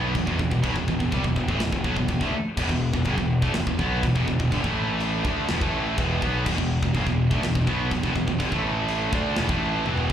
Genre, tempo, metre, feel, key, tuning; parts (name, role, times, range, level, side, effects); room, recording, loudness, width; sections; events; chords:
heavy metal; 124 BPM; 4/4; straight; A4 = 438 Hz
heavy high-gain guitar; riff; 0.0-10.1 s; E2 to D4; -28 LUFS; right 5 dB; distortion
high-gain distorted guitar; riff; 0.0-10.1 s; E2 to D4; -28 LUFS; left 1 dB; distortion
scooped high-gain guitar; riff; 0.0-10.1 s; E2 to D4; -30 LUFS; left 7 dB; distortion, slapback echo
fuzz picked electric bass; bass; 0.0-10.1 s; E1 to D2; -28 LUFS; equal; overdrive
tight metal drum kit; drums; 0.1-10.1 s; china cymbal, crash cymbal, kick drum, snare drum, toms; -29 LUFS; equal
little or no reverb; live gig heard through the venue's PA, club ambience; -22 LUFS; side -9 dB against mid
0.0-10.1 A section
drum fill 9.9
0.0 Em; 4.6 A5; 5.2 Em; 8.5 A5; 9.1 E5